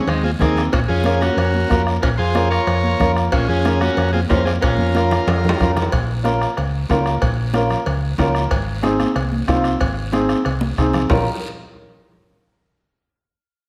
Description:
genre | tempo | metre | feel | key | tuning
latin, cumbia | 185 BPM | 4/4 | straight | Bb minor | A4 = 441 Hz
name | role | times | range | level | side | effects
overdriven combo organ | melody | 0.0-5.7 s | C4 to Db5 | -25 LUFS | equal | none
electric guitar at the edge of break-up | second line | 0.0-5.7 s | Ab3 to F4 | -27 LUFS | equal | harmonic tremolo
hollow-body short-scale fingered electric bass | bass | 0.1-11.3 s | Ab1 to F2 | -23 LUFS | equal | none
bombo | percussion | 0.1-11.2 s | none | -26 LUFS | equal | none
congas | percussion | 0.1-11.2 s | none | -29 LUFS | equal | none
cowbell and timbales | percussion | 0.1-11.2 s | none | -29 LUFS | equal | none
guiro | percussion | 0.1-11.2 s | none | -39 LUFS | equal | none
warm upright piano | accompaniment | 0.4-11.3 s | C4 to C5 | -24 LUFS | equal | none
room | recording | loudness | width
wet large studio reverb, RT60 1.4 s | none | -18 LUFS | mono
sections
0.0-5.9 A section; 5.9-11.1 B section; 11.1-12.4 C section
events
drum fill 4.6-5.9, 10.6-11.1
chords
0.0 Ab; 0.7 Bbm; 8.5 Ab; 11.1 Bbm

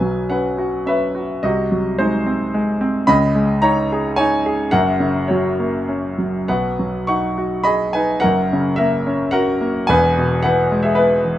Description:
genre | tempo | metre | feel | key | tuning
classical, lyrical solo piano | 98-112 BPM | 3/4 | rubato | B major | A4 = 442 Hz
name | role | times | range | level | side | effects
clear grand piano | solo | 0.0-11.4 s | E1 to C#6 | -16 LUFS | equal | none
room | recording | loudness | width
light reverb | minimal, uncompressed stereo recording | -16 LUFS | side -12 dB against mid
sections
0.0-11.4 A section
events
none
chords
0.0 Bsus2; 1.4 G#7/B#; 3.1 C#sus2; 4.7 F#; 6.5 B6; 8.2 F#; 9.9 E

